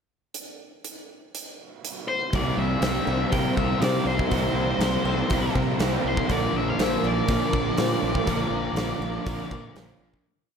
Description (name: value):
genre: rock, shoegaze and dream pop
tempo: 121 BPM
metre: 4/4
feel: straight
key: C mixolydian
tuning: A4 = 436 Hz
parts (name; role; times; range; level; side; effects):
- huge arena drum kit; drums; 0.3-10.3 s; hi-hat, kick drum, snare drum; -29 LUFS; equal; none
- octave-fuzz lead guitar; melody; 2.1-9.7 s; C5 to G5; -30 LUFS; left 4 dB; distortion, digital delay
- soft string machine; sustained chords; 2.3-10.2 s; Bb4 to E6; -34 LUFS; equal; ensemble chorus
- picked twelve-string acoustic guitar; arpeggios; 2.3-10.3 s; A4 to C5; -35 LUFS; left 10 dB; lush chorus, digital delay
- overdriven semi-hollow guitar; riff; 2.3-10.3 s; Bb2 to Bb4; -28 LUFS; right 9 dB; reverse reverb
- thick fuzz guitar; riff; 2.3-10.3 s; Bb2 to C4; -30 LUFS; left 10 dB; distortion, wide subtle chorus
- fuzz fingered electric bass; bass; 2.3-10.2 s; Bb1 to C3; -29 LUFS; equal; overdrive
room: light reverb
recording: none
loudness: -22 LUFS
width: side -6 dB against mid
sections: 0.4-2.3 pickup bar; 2.3-10.3 verse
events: fade-out 8.3-10.3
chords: 0.4 N.C.; 2.3 C7; 6.3 Bbmaj7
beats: | 0.35 0.85 1.35 1.84 | 2.34 2.84 3.33 3.83 | 4.32 4.82 5.31 5.80 | 6.30 6.79 7.29 7.79 | 8.28 8.78 9.27 9.77